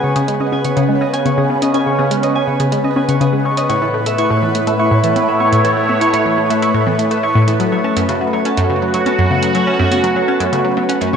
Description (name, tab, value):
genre	ambient, sequencer-driven space music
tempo	123 BPM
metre	4/4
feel	straight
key	unclear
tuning	A4 = 440 Hz
part	sweeping resonant pad	sustained chords	0.0-11.2 s	A2 to F#5	-17 LUFS	right 1 dB	chorus
part	concert harp	arpeggios	0.0-11.2 s	F#4 to C#6	-20 LUFS	right 1 dB	auto-pan, tape echo
part	analog pluck	riff	0.0-11.2 s	F#2 to E4	-17 LUFS	left 1 dB	chorus, phaser, tape echo
part	bubbling stepped-filter texture	texture	0.0-11.2 s	B3 to B4	-22 LUFS	left 1 dB	chorus, built-in reverb
part	electronic hi-hat and congas	percussion	0.2-11.1 s	none	-27 LUFS	right 5 dB	tape echo
room	moderate plate reverb, RT60 2.7 s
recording	none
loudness	-13 LUFS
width	side -7 dB against mid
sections	0.0-11.2 A section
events	filter sweep on synth arpeggio sound 0.0-11.2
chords	0.0 C#sus2; 3.7 A; 7.6 F#m